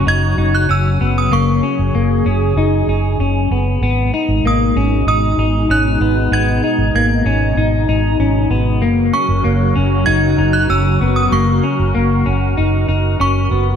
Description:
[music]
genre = dream pop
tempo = 96 BPM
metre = 4/4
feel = straight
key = unclear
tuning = A4 = 443 Hz
[part]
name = synth chime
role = melody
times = 0.0-13.8 s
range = C#6 to G#6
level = -20 LUFS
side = right 2 dB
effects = ensemble chorus, digital delay
[part]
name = phased analog pad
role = sustained chords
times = 0.0-13.8 s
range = B2 to A#4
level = -19 LUFS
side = equal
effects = phaser, chorus
[part]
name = clean electric guitar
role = arpeggios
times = 0.0-13.8 s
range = A#3 to D#4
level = -18 LUFS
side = left 4 dB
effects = wide subtle chorus, digital delay
[part]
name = vintage muted fingered electric bass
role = bass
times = 0.0-13.8 s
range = F#1 to G#1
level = -17 LUFS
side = right 1 dB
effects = none
[sound]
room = light reverb, digital ambience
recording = dark, warm production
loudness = -13 LUFS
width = side -8 dB against mid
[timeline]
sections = 0.0-13.8 A section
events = none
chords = 0.0 F#; 3.8 G#madd9; 8.8 F#

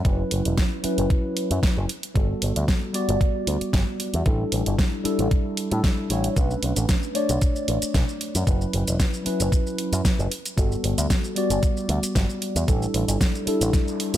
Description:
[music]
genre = nu-disco, nu disco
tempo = 114 BPM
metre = 4/4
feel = swing 53% on 16ths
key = unclear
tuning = A4 = 439 Hz
[part]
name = mellow tine electric piano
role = accompaniment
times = 0.0-14.2 s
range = F#3 to D5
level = -26 LUFS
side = equal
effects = phaser, sidechain pumping, dub echo
[part]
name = picked electric bass with an envelope filter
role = bass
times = 0.0-14.2 s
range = E1 to A2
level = -24 LUFS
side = equal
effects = tube saturation
[part]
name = electronic kick drum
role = drums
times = 0.0-13.8 s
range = none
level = -22 LUFS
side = equal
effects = studio reverb
[part]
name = pop drum kit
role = drums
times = 0.1-14.2 s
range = hi-hat, shaker, snare drum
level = -28 LUFS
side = right 1 dB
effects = studio reverb
[sound]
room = little or no reverb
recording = none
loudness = -21 LUFS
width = side -12 dB against mid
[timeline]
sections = 0.0-14.2 A section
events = none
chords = 0.1 F#7sus4; 1.9 Gmaj9; 4.3 A7sus4; 6.4 Bm9; 8.5 F#7sus4; 10.3 Gmaj9; 12.7 A7sus4

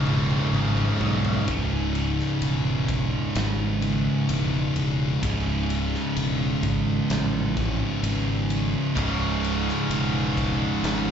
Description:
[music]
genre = stoner and doom metal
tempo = 64 BPM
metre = 4/4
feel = straight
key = C# minor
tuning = A4 = 441 Hz
[part]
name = heavy high-gain guitar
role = riff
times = 0.0-1.5, 9.0-11.1 s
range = C#2 to C#3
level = -28 LUFS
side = left 1 dB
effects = distortion, slapback echo
[part]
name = thick fuzz guitar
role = riff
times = 0.0-11.1 s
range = C#2 to C#3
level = -28 LUFS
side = left 7 dB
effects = distortion
[part]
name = thick fuzz guitar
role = riff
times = 0.0-11.1 s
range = C#2 to C#3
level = -27 LUFS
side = right 6 dB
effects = distortion
[part]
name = fingered electric bass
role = bass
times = 0.0-11.1 s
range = C#1 to B1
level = -27 LUFS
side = equal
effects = tube saturation
[part]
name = big rock drum kit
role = drums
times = 0.1-11.1 s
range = kick drum, ride cymbal, snare drum, toms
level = -32 LUFS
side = left 1 dB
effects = none
[sound]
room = small room ambience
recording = live gig heard through the venue's PA, club reverb, nothing above 7.8 kHz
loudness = -22 LUFS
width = side -8 dB against mid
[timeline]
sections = 0.0-1.5 A section; 1.5-11.1 B section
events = drum fill 0.0-1.5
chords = 0.0 C#m

